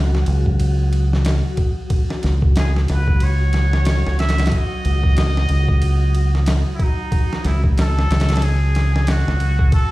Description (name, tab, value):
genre	trip hop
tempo	92 BPM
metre	4/4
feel	swing 59% on 16ths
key	unclear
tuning	A4 = 439 Hz
part	deep dub fingered electric bass	bass	0.0-9.7 s	C#2	-16 LUFS	equal	none
part	wind-like tuned noise texture	texture	0.0-9.9 s	F#3 to F#4	-30 LUFS	equal	built-in reverb
part	boom bap sampler-style drum kit	drums	0.1-9.9 s	kick drum, ride cymbal, snare drum	-20 LUFS	equal	none
part	trumpet with straight mute	melody	2.6-9.9 s	D#4 to E5	-26 LUFS	equal	vintage 12-bit sampler grit, tape echo
room	little or no reverb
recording	played on a big sound system in a bare room, stone room reverb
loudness	-15 LUFS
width	side -19 dB against mid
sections	0.0-9.9 A section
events	none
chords	0.0 F#5/C#